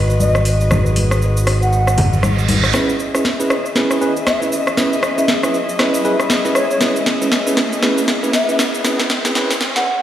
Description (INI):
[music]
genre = afro house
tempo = 118 BPM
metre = 4/4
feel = swing 59% on 16ths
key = C# minor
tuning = A4 = 437 Hz
[part]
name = dark chamber string section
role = sustained chords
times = 0.0-9.8 s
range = G#3 to E5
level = -23 LUFS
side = left 2 dB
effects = none
[part]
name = bell-like tine electric piano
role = stabs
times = 0.0-9.8 s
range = C#4 to B4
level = -21 LUFS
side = right 2 dB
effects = low-pass filter, dub echo
[part]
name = smooth synth bass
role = bass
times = 0.0-2.7 s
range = G#1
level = -16 LUFS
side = equal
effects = none
[part]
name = afro-pop drum kit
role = drums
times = 0.1-9.8 s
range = hi-hat, rim click, shaker, snare drum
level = -19 LUFS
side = equal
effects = none
[part]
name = breathy mellow bansuri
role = melody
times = 0.2-10.0 s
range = C#5 to F#5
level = -23 LUFS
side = left 1 dB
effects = low-pass filter, digital delay
[part]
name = congas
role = percussion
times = 0.2-2.6 s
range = none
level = -20 LUFS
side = left 1 dB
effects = none
[part]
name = reverse cymbal and riser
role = sound effects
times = 2.0-9.9 s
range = none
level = -26 LUFS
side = right 2 dB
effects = none
[sound]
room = moderate lush hall reverb, RT60 2.4 s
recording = played on a big sound system in a bare room, stone room reverb, high-pass filter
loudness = -14 LUFS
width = side -11 dB against mid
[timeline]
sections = 0.0-2.7 A section; 2.7-10.0 B section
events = reverse cymbal 2.0-2.7; build-up 2.7-10.0; drum fill 2.7-9.9; riser 2.7-9.9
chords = 0.0 G#m7; 2.7 C#m7